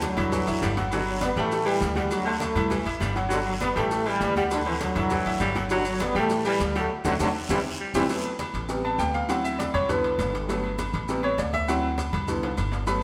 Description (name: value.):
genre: latin, salsa.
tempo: 201 BPM.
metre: 4/4.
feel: straight.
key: unclear.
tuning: A4 = 444 Hz.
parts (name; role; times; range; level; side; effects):
bright trombone section; melody; 0.0-8.0 s; A2 to B3; -30 LUFS; equal; none.
warm baritone saxophone; second line; 0.0-8.0 s; D3 to G3; -35 LUFS; equal; none.
bright upright piano; accompaniment; 0.0-13.0 s; C3 to B5; -30 LUFS; equal; none.
upright bass; bass; 0.0-13.0 s; G1 to D2; -34 LUFS; equal; none.
congas; percussion; 0.0-13.0 s; none; -38 LUFS; equal; none.
cowbell; percussion; 0.0-13.0 s; none; -39 LUFS; equal; none.
guiro; percussion; 0.0-8.0 s; none; -43 LUFS; equal; none.
maracas; percussion; 0.0-13.0 s; none; -46 LUFS; equal; none.
timbales and agogo bells; percussion; 0.0-13.0 s; none; -37 LUFS; equal; none.
room: wet stone room reverb, RT60 1.5 s.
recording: band playing live in one room.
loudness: -26 LUFS.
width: mono.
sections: 0.0-8.1 A section; 8.1-13.0 B section.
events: band accent 6.9-8.1; drum fill 7.5-8.1, 12.4-12.9; upright piano solo 8.1-13.0.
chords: 0.3 C; 0.9 Gmaj7; 1.5 A5; 2.1 D7; 2.7 C; 3.3 Gmaj7; 3.9 A5; 4.5 D7; 5.1 C; 5.7 Gmaj7; 6.3 A5; 6.9 D7; 7.5 C; 8.1 F#madd11; 8.7 Am7; 9.3 D7; 9.9 Cmaj7; 10.5 Gmaj7; 11.1 Am7; 11.7 D7; 12.3 Cmaj7.